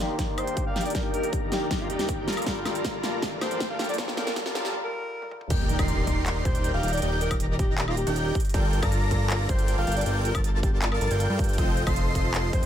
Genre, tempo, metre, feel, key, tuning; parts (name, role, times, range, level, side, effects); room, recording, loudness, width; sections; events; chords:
future bass; 158 BPM; 4/4; half-time; A4 = 439 Hz
barky tine electric piano; accompaniment; 0.0-5.5 s; Eb3 to D5; -35 LUFS; left 4 dB; overdrive, phaser, sidechain pumping, ping-pong delay
ethereal airy pad; sustained chords; 0.8-4.7 s; Eb2 to G4; -40 LUFS; left 4 dB
dense compressed supersaw; riff; 0.0-12.7 s; Eb4 to C6; -31 LUFS; equal; sidechain pumping, low-pass filter
big-room dance drum kit; drums; 0.0-12.7 s; crash cymbal, handclaps, hi-hat, snare drum, toms, woodblock; -32 LUFS; equal
riser and impact; sound effects; 1.4-7.0 s; -38 LUFS; right 1 dB
electronic kick drum; drums; 0.2-12.6 s; -27 LUFS; equal
mellow alto saxophone; melody; 0.4-12.7 s; F4 to F5; -33 LUFS; equal; sidechain pumping, digital delay
airy dreamy lead; arpeggios; 5.5-12.7 s; G6 to C7; -35 LUFS; equal; chorus, sidechain pumping, ping-pong delay
fat analog bass; bass; 5.5-12.7 s; Eb1 to G2; -27 LUFS; equal; sidechain pumping
light reverb; high-pass filter; -23 LUFS; side -10 dB against mid
0.0-5.5 A section; 5.5-12.7 B section
build-up 0.0-5.5; drum fill 0.0-4.7, 5.2; filter sweep on supersaw synth 0.0-5.5; filter sweep 0.0-5.5; riser 1.4-4.7; break 4.7-5.5; drop 5.5-12.7; impact 5.5-7.0
0.0 Ebmaj7; 2.3 Gm9; 5.5 Ebmaj7; 8.4 Gm9; 11.6 F9